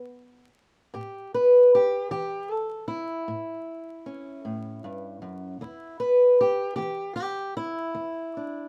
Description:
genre	acoustic country blues, solo or duo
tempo	52 BPM (dotted quarters)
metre	12/8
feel	straight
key	unclear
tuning	A4 = 440 Hz
part	fingerpicked old ladder-braced acoustic guitar	solo	0.0-8.7 s	E2 to B4	-26 LUFS	equal	none
room	light reverb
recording	vinyl crackle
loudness	-24 LUFS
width	mono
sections	0.0-8.7 A section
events	none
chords	0.0 N.C.; 1.0 A7; 5.6 Em

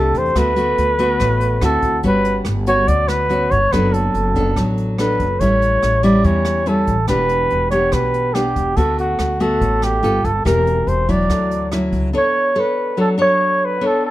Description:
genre	bossa nova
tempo	143 BPM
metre	4/4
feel	straight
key	D major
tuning	A4 = 440 Hz
part	mellow flugelhorn	melody	0.0-14.1 s	F#4 to D5	-18 LUFS	right 1 dB	none
part	nylon-string guitar	accompaniment	0.0-14.1 s	A2 to C#5	-19 LUFS	left 1 dB	none
part	upright bass	bass	0.0-12.1 s	E1 to E2	-21 LUFS	equal	none
part	jazz brush drum kit	drums	0.1-12.0 s	hi-hat, kick drum, rim click	-26 LUFS	equal	none
room	light reverb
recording	dark, warm production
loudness	-14 LUFS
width	side -15 dB against mid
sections	0.0-12.1 A section; 12.1-14.1 B section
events	none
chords	0.4 D6; 1.6 D9; 2.0 Gmaj7#11; 3.7 D6/F#; 5.4 A7; 7.1 Em7; 8.8 D6; 10.0 G9; 10.5 C7/E; 11.3 Dmaj9; 12.1 Bm9

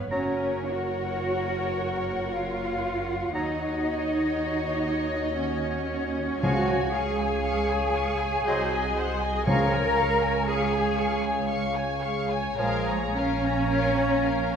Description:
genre	classical, slow romantic movement for symphony orchestra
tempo	49-61 BPM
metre	3/4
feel	rubato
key	Db major from 6.4 s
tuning	A4 = 440 Hz
part	muted studio violin section	melody	0.0-14.6 s	F#5 to Db6	-38 LUFS	left 2 dB	none
part	muted studio violin section	second line	0.0-14.6 s	C#5 to Bb5	-36 LUFS	left 2 dB	none
part	muted symphonic viola section	accompaniment	0.0-14.6 s	Ab4 to Eb5	-36 LUFS	right 1 dB	none
part	mellow French horn section	sustained chords	0.0-14.6 s	F#4 to F5	-33 LUFS	left 4 dB	none
part	muted studio cello section	bass	0.0-14.6 s	Ab3 to Bb4	-28 LUFS	right 2 dB	none
part	muted studio double bass section	bass	0.0-14.6 s	F#1 to D#2	-32 LUFS	right 3 dB	none
part	dark clarinet	second line	0.1-13.0 s	Db5 to Eb5	-37 LUFS	equal	none
part	flute section	second line	0.1-14.6 s	Ab4 to Bb5	-32 LUFS	left 5 dB	none
part	warm oboe	second line	0.1-13.0 s	Ab5 to A#5	-36 LUFS	equal	none
part	clear bassoon	accompaniment	0.1-13.0 s	F3 to F#3	-36 LUFS	right 2 dB	none
part	timpani	percussion	6.4-10.9 s	Db3	-30 LUFS	left 1 dB	none
room	wet scoring stage reverb, RT60 1.6 s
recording	none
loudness	-24 LUFS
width	side -7 dB against mid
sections	0.0-14.6 A section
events	none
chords	0.1 F#; 3.4 D#m7; 6.4 Db; 8.5 Ab7/C; 9.5 Db; 12.6 Bbm7

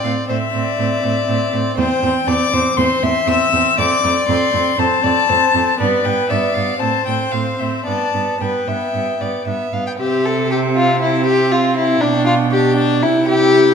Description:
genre	quick classical-period movement for string quartet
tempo	119 BPM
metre	4/4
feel	rubato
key	C major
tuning	A4 = 440 Hz
part	rich violin	melody	0.0-13.7 s	D5 to E6	-20 LUFS	left 6 dB	none
part	warm violin	second line	0.0-13.7 s	D4 to G5	-18 LUFS	left 3 dB	none
part	warm viola	accompaniment	0.0-13.7 s	B3 to E4	-21 LUFS	right 4 dB	none
part	rich cello	bass	0.0-13.7 s	E2 to C3	-22 LUFS	right 6 dB	none
room	wet recital hall reverb, RT60 1.4 s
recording	none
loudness	-14 LUFS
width	side -6 dB against mid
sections	0.0-10.0 A section; 10.0-13.7 B section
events	none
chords	0.0 Am; 1.8 C/E; 3.8 Dm7/F; 5.8 G; 6.8 Am; 7.9 G; 10.0 C; 12.0 G/B; 13.0 C

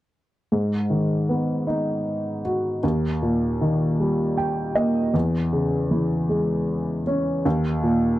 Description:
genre	pop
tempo	52 BPM (dotted quarters)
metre	6/8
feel	straight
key	G# minor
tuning	A4 = 440 Hz
part	warm upright piano	accompaniment	0.5-8.2 s	D#2 to G5	-20 LUFS	equal	none
room	moderate booth ambience, RT60 0.2 s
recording	dry, close 1970s-style studio recording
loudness	-21 LUFS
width	side -15 dB against mid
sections	0.5-8.2 A section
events	upright piano fill 4.0-5.1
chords	0.5 G#m7; 2.8 D#; 5.1 C#m/E; 7.5 D#5

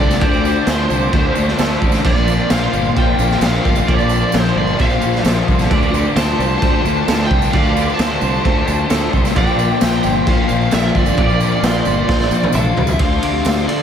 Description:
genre	rock, shoegaze and dream pop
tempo	131 BPM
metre	4/4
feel	straight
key	D minor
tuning	A4 = 440 Hz
part	fuzz lead guitar	melody	0.0-13.8 s	C5 to A5	-22 LUFS	left 1 dB	distortion, ping-pong delay
part	string machine, cellos	sustained chords	0.0-13.8 s	F4 to D6	-26 LUFS	right 4 dB	phaser, ensemble chorus
part	electric guitar at the edge of break-up	arpeggios	0.0-13.8 s	G4 to D5	-25 LUFS	right 4 dB	ensemble chorus, ping-pong delay
part	electric guitar through a small old amp	riff	0.0-13.8 s	Bb2 to F4	-31 LUFS	right 9 dB	none
part	thick fuzz guitar	riff	0.0-13.8 s	Bb2 to D4	-19 LUFS	left 5 dB	distortion, lush chorus
part	fuzz fingered electric bass	bass	0.0-13.8 s	G1 to D3	-20 LUFS	right 1 dB	overdrive
part	tambourine	percussion	0.0-13.6 s	none	-34 LUFS	right 19 dB	none
part	raw garage drum kit	drums	0.1-13.8 s	crash cymbal, kick drum, ride cymbal, snare drum, toms	-18 LUFS	right 1 dB	none
room	moderate cathedral reverb, RT60 5.6 s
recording	dreamy mix soaked in reverb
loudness	-13 LUFS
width	side -8 dB against mid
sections	0.0-13.0 A section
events	drum fill 12.1-13.0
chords	0.0 Dm7; 2.0 Bbadd9; 5.7 Dm7; 9.4 Bbadd9; 13.0 Dm7

